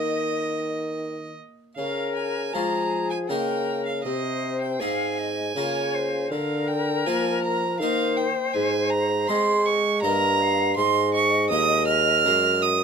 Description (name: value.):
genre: classical, baroque-style sonata movement with continuo.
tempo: 80 BPM.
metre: 3/4.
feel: straight.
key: Ab major.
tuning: A4 = 440 Hz.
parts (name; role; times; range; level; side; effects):
concert flute; melody; 0.0-12.8 s; Ab4 to F5; -29 LUFS; left 9 dB; none.
rich violin; second line; 0.0-12.8 s; Eb5 to F6; -25 LUFS; right 5 dB; none.
harpsichord; accompaniment; 0.0-12.8 s; Eb2 to Eb5; -31 LUFS; left 2 dB; none.
dark bassoon; bass; 0.0-12.8 s; Eb2 to Ab3; -26 LUFS; right 1 dB; none.
room: light reverb.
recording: none.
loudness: -21 LUFS.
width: side -6 dB against mid.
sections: 0.0-1.8 A section; 1.8-12.8 B section.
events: none.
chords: 0.0 Eb5; 1.8 Db; 3.3 Eb7/Db; 4.0 Ab/C; 5.6 Bbm7/Db; 6.3 Bb/D; 7.8 Eb; 8.6 Ab; 10.0 Eb/G; 10.8 Ab5; 12.3 Ab7/Gb.